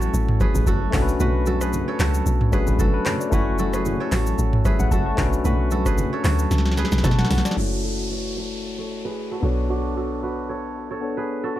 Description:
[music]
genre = afrobeats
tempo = 113 BPM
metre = 4/4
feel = swing 55% on 16ths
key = F# minor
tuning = A4 = 440 Hz
[part]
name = barky tine electric piano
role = accompaniment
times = 0.0-11.6 s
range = G#3 to C#6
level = -27 LUFS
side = left 5 dB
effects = low-pass filter
[part]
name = kora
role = riff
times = 0.0-11.6 s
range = C#4 to C#5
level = -29 LUFS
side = right 5 dB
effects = low-pass filter, tape echo
[part]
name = deep log drum bass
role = bass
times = 0.0-11.5 s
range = F#1 to B2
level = -23 LUFS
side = equal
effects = none
[part]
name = booming analog drum machine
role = drums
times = 0.0-7.6 s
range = handclaps, hi-hat, kick drum, rim click, shaker, snare drum, toms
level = -23 LUFS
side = equal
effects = none
[part]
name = congas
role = percussion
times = 0.4-7.4 s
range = none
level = -29 LUFS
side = right 2 dB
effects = none
[part]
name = downlifter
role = sound effects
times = 7.6-11.6 s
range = none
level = -35 LUFS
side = equal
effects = none
[sound]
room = digital ambience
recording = dark, warm production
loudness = -19 LUFS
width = side -13 dB against mid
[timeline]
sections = 0.0-7.6 A section; 7.6-11.6 B section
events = drum fill 6.5-7.6; filter sweep 7.6-11.6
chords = 0.0 F#m7; 0.9 Bm9; 3.3 F#m7; 5.2 Bm9; 7.6 F#m7; 9.4 Bm9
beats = 0.14 0.67 | 1.20 1.73 2.26 2.79 | 3.32 3.85 4.38 4.92 | 5.45 5.98 6.51 7.04 | 7.57 8.10 8.63 9.16 | 9.70 10.23 10.76 11.29

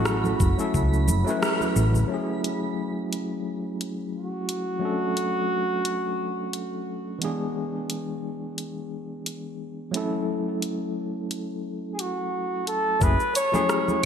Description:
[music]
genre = sunset chillout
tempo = 88 BPM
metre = 4/4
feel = swing 55% on 16ths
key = F# minor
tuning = A4 = 435 Hz
[part]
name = mellow flugelhorn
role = melody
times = 0.0-7.2, 11.9-14.0 s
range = F#4 to C#5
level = -27 LUFS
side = right 1 dB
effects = ping-pong delay
[part]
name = overdriven tine electric piano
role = accompaniment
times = 0.0-14.1 s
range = E3 to B4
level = -28 LUFS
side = left 1 dB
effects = fast tremolo, auto-pan, digital delay
[part]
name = hollow-body short-scale fingered electric bass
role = bass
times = 0.0-2.0, 13.0-13.2 s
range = F#1 to C#2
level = -22 LUFS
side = equal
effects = none
[part]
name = twinkling granular texture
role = texture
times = 0.0-2.1 s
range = B5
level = -37 LUFS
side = right 7 dB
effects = built-in reverb
[part]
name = deep house drum kit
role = drums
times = 0.1-14.0 s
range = hi-hat, rim click, shaker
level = -28 LUFS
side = equal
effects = studio reverb, gated reverb
[part]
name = congas and bongos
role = percussion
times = 0.2-2.1, 13.0-14.0 s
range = none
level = -34 LUFS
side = right 2 dB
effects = none
[part]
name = electronic kick drum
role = drums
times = 0.4-0.9, 13.0-13.2 s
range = none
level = -24 LUFS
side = equal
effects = studio reverb
[sound]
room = wet plate reverb, RT60 2.6 s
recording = bright 1980s-style digital production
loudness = -24 LUFS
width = side -8 dB against mid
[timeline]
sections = 0.0-2.1 A section; 2.1-13.0 B section; 13.0-14.1 C section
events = band accent 1.4-1.8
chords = 0.0 A6; 2.1 F#m9; 4.8 Dmaj7; 7.2 E7; 9.9 A6; 13.0 F#m9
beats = 0.06 0.74 1.42 | 2.10 2.78 3.46 4.15 | 4.83 5.51 6.19 6.87 | 7.56 8.24 8.92 9.60 | 10.28 10.96 11.65 12.33 | 13.01 13.69

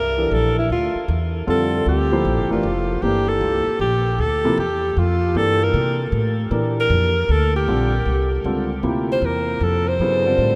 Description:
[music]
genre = modal jazz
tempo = 155 BPM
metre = 3/4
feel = swing 66% on 8ths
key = G dorian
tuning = A4 = 440 Hz
[part]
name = breathy alto saxophone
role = melody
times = 0.0-10.6 s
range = E4 to C5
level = -23 LUFS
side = equal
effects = none
[part]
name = upright bass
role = bass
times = 0.0-10.6 s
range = F1 to C3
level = -24 LUFS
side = equal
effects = none
[part]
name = warm concert grand piano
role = accompaniment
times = 0.2-10.6 s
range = C3 to C5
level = -26 LUFS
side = equal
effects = none
[sound]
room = wet huge ambient reverb, RT60 7.6 s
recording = in a vast, echoing space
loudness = -20 LUFS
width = mono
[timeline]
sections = 0.0-10.6 A section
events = none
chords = 0.0 Gm11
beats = 0.31 | 0.70 1.09 1.48 | 1.86 2.25 2.64 | 3.03 3.42 3.80 | 4.19 4.58 4.96 | 5.35 5.74 6.13 | 6.51 6.90 7.29 | 7.68 8.06 8.45 | 8.84 9.23 9.61 | 10.00 10.39

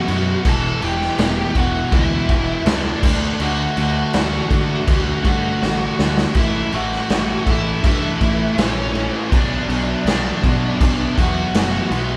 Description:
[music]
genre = quiet-loud alternative rock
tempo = 81 BPM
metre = 4/4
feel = straight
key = B minor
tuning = A4 = 440 Hz
[part]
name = high-gain lead guitar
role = melody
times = 0.0-11.9 s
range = C#4 to A5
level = -27 LUFS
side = equal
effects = distortion, analog delay
[part]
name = thick fuzz guitar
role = riff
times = 0.0-12.2 s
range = E2 to D4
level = -24 LUFS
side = equal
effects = distortion
[part]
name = growling picked electric bass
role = bass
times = 0.1-12.2 s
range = E1 to D3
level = -27 LUFS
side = equal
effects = overdrive
[part]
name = raw garage drum kit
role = drums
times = 0.1-12.1 s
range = crash cymbal, kick drum, snare drum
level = -22 LUFS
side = equal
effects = none
[sound]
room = light reverb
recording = band playing live in one room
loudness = -18 LUFS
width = mono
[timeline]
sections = 0.0-12.2 A section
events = drum fill 5.6-6.4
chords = 0.4 Em; 3.0 D; 6.4 A; 9.3 Bm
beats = | 0.45 1.19 1.92 2.66 | 3.40 4.14 4.88 5.62 | 6.35 7.09 7.83 8.57 | 9.31 10.06 10.80 11.54

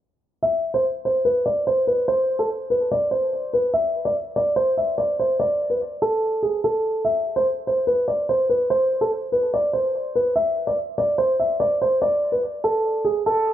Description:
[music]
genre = hip hop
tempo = 145 BPM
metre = 4/4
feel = half-time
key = A harmonic minor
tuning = A4 = 440 Hz
[part]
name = dark concert grand piano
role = melody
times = 0.4-13.5 s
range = G#4 to E5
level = -19 LUFS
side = equal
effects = tape echo
[sound]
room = moderate plate reverb, RT60 2.8 s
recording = low-pass filter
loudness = -19 LUFS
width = side -11 dB against mid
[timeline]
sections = 0.4-13.5 A section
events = filter sweep 0.4-13.5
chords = none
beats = | 0.43 0.84 1.26 1.67 | 2.08 2.50 2.91 3.33 | 3.74 4.15 4.57 4.98 | 5.39 5.81 6.22 6.63 | 7.05 7.46 7.88 8.29 | 8.70 9.12 9.53 9.95 | 10.36 10.77 11.19 11.60 | 12.01 12.43 12.84 13.26

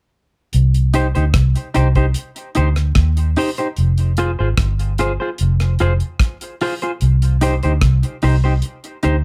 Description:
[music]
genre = roots reggae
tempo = 74 BPM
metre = 4/4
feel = straight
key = C minor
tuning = A4 = 440 Hz
[part]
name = vintage muted fingered electric bass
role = bass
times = 0.5-9.2 s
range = F1 to Eb2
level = -17 LUFS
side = equal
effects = none
[part]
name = damped 70s drum kit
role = drums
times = 0.5-9.2 s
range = hi-hat, kick drum, rim click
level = -23 LUFS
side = equal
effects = none
[part]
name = semi-hollow electric guitar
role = accompaniment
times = 0.9-9.2 s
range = Eb4 to C5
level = -23 LUFS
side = equal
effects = subtle chorus, dub echo
[sound]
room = light reverb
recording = none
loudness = -17 LUFS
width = mono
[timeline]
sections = 0.5-9.2 A section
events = none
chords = 0.5 Cm; 3.8 Fm; 7.0 Cm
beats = | 0.53 1.34 2.15 2.96 | 3.77 4.58 5.39 6.20 | 7.01 7.82 8.63

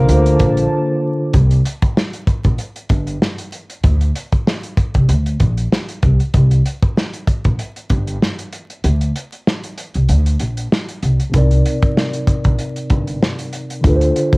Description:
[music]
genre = hip hop, boom-bap hip-hop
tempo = 96 BPM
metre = 4/4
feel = swing 56% on 16ths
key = C dorian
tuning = A4 = 440 Hz
[part]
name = breathy tenor saxophone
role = melody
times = 0.0-0.7 s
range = Bb3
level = -21 LUFS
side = right 1 dB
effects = high-pass filter, low-pass filter, cassette tape, analog delay
[part]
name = mellow tine electric piano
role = accompaniment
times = 0.0-1.4, 11.3-14.4 s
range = C3 to D5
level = -17 LUFS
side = equal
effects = medium stereo tremolo, cassette tape, high-pass filter, low-pass filter
[part]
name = warm analog pad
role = sustained chords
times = 0.0-1.3 s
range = Bb3 to D6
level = -28 LUFS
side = left 1 dB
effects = chorus, high-pass filter, low-pass filter
[part]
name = upright bass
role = bass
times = 0.0-14.1 s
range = G1 to D2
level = -15 LUFS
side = equal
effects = none
[part]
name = warm soul drum kit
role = drums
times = 0.1-14.4 s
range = hi-hat, kick drum, snare drum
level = -17 LUFS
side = equal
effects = cassette tape
[sound]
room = light reverb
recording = home recording on cassette, vinyl crackle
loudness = -14 LUFS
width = side -27 dB against mid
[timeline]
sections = 0.0-1.3 A section; 1.3-14.4 B section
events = break 0.7-1.3; kick muted 8.8-11.3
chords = 0.1 Bbmaj7; 1.3 C5; 3.8 Csus2; 5.1 Bb; 6.3 C5; 8.8 Csus2; 10.1 Bb; 11.3 Cm7; 13.8 Dm7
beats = 0.09 0.72 | 1.34 1.97 2.59 3.22 | 3.84 4.47 5.09 5.72 | 6.34 6.97 7.59 8.22 | 8.84 9.47 10.09 10.72 | 11.34 11.97 12.59 13.22 | 13.84

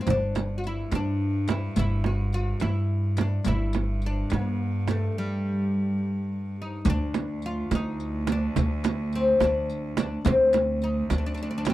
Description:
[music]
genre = Arabic maqam ensemble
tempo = 71 BPM (dotted quarters)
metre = 6/8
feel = straight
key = G maqam rast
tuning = A4 = 442 Hz
[part]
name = oud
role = melody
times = 0.0-11.7 s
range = G3 to F#4-50c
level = -28 LUFS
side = left 2 dB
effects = none
[part]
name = bright cello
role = drone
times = 0.0-11.7 s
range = D2 to G2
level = -34 LUFS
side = right 1 dB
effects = none
[part]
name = upright bass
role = bass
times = 0.1-11.7 s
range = G1 to G2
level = -27 LUFS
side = equal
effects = none
[part]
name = frame drum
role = percussion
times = 0.1-11.7 s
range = none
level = -27 LUFS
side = right 5 dB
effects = none
[part]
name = riq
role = percussion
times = 0.1-11.7 s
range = none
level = -34 LUFS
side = left 7 dB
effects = none
[sound]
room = little or no reverb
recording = dry, close 1970s-style studio recording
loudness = -24 LUFS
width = side -15 dB against mid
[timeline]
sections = 0.0-6.9 A section; 6.9-11.7 B section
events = stop 5.2-6.9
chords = none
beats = | 0.07 0.92 | 1.77 2.62 | 3.47 4.32 | 5.16 6.01 | 6.86 7.71 | 8.56 9.41 | 10.25 11.10

